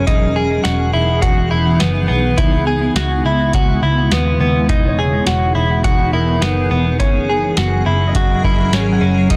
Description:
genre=dream pop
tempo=104 BPM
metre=4/4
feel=straight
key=E lydian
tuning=A4 = 440 Hz
part: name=granular cloud pad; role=sustained chords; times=0.0-9.4 s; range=C#3 to A#4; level=-21 LUFS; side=equal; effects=built-in reverb
part: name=direct-recorded clean electric guitar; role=arpeggios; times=0.0-9.4 s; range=B3 to G#4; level=-21 LUFS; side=equal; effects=lush chorus, tape echo
part: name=vintage muted picked electric bass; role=bass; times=0.0-9.4 s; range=E1 to D#2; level=-20 LUFS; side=equal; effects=none
part: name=booming analog drum machine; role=drums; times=0.1-9.4 s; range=hi-hat, kick drum, snare drum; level=-19 LUFS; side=equal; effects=none
part: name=Celtic harp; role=texture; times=4.9-9.4 s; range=A#4 to F#5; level=-33 LUFS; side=equal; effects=tape echo
room=light reverb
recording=dense, heavily limited modern master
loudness=-15 LUFS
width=mono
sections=0.0-9.4 A section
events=none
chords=0.1 Emaj7; 2.4 C#m7; 4.7 Emaj7; 7.0 F#add9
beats=| 0.07 0.65 1.22 1.80 | 2.38 2.96 3.53 4.11 | 4.68 5.26 5.84 6.42 | 6.99 7.57 8.15 8.72 | 9.30

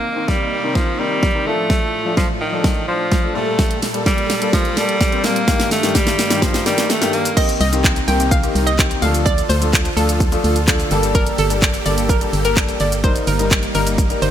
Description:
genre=dance-pop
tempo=127 BPM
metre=4/4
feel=straight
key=C dorian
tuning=A4 = 440 Hz
part: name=edgy alto saxophone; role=melody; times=0.0-7.4 s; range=Eb3 to Bb3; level=-20 LUFS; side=right 1 dB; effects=ping-pong delay
part: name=clear baby grand piano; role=accompaniment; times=0.0-14.3 s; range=G2 to C5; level=-23 LUFS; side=left 4 dB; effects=sidechain pumping
part: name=supersaw chords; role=sustained chords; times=0.0-14.3 s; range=A2 to A4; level=-25 LUFS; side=right 2 dB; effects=lush chorus, sidechain pumping
part: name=pop drum kit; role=drums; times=0.3-14.3 s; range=crash cymbal, handclaps, hi-hat, kick drum, shaker, snare drum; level=-18 LUFS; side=equal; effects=none
part: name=hollow square pluck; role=melody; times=7.4-14.3 s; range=A4 to G5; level=-22 LUFS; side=right 1 dB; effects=chorus, sidechain pumping, ping-pong delay
part: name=organ-like FM bass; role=bass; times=7.6-14.3 s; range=G1 to D2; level=-20 LUFS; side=equal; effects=sidechain pumping
room=light reverb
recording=bright 1980s-style digital production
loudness=-15 LUFS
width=side -10 dB against mid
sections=0.0-7.4 A section; 7.4-14.3 B section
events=build-up 0.0-7.4; drum fill 0.0-7.4; drop 7.4-14.3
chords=0.0 Cm7; 1.5 Dm; 3.4 Gmadd9; 5.5 Eb/G; 7.4 Cm7; 9.0 Dm; 10.9 Gmadd9; 13.0 Eb/G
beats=0.28 0.76 1.23 | 1.70 2.17 2.65 3.12 | 3.59 4.06 4.54 5.01 | 5.48 5.95 6.43 6.90 | 7.37 7.84 8.32 8.79 | 9.26 9.73 10.21 10.68 | 11.15 11.62 12.10 12.57 | 13.04 13.51 13.98

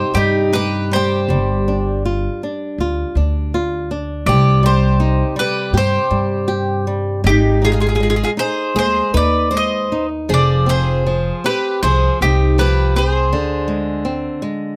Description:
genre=fado-style ballad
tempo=80 BPM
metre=4/4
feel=rubato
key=C harmonic minor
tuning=A4 = 440 Hz
part: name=mandolin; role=melody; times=0.0-14.0 s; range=G4 to Eb5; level=-21 LUFS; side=equal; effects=none
part: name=picked twelve-string acoustic guitar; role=second line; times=0.0-14.0 s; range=Eb4 to C5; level=-25 LUFS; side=equal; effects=none
part: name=flamenco guitar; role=accompaniment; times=0.0-14.8 s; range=C3 to G4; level=-25 LUFS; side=equal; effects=none
part: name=upright bass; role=bass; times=0.0-14.3 s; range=F1 to G2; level=-20 LUFS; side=equal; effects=none
room=little or no reverb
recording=close, detailed microphones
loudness=-17 LUFS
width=mono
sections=0.0-14.8 A section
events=none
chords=0.0 Cm; 1.3 G7sus4; 4.3 C5; 7.2 Ab5; 10.3 Fm; 13.3 D7(b5, no3)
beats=0.53 | 1.29 2.04 2.79 3.52 | 4.25 4.99 5.72 6.47 | 7.23 7.99 8.75 9.52 | 10.29 11.05 11.82 12.57 | 13.32 14.06

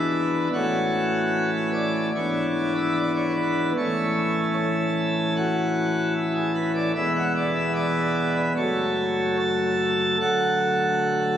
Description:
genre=classical, chorale-style piece for pipe organ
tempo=74 BPM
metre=4/4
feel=straight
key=A major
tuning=A4 = 439 Hz
part: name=pipe organ, plenum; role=solo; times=0.0-11.4 s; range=D1 to A5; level=-21 LUFS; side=equal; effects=none
room=wet church reverb, RT60 3.2 s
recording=recorded on a phone in the room, club reverb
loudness=-21 LUFS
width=side -10 dB against mid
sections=0.0-11.4 A section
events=none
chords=0.0 E7/G#; 0.5 A; 2.1 E7/G#; 3.8 A; 7.0 E; 8.6 F#m; 10.2 D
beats=| 0.52 1.32 2.13 2.94 | 3.75 4.55 5.35 6.15 | 6.95 7.76 8.57 9.40 | 10.21 11.02

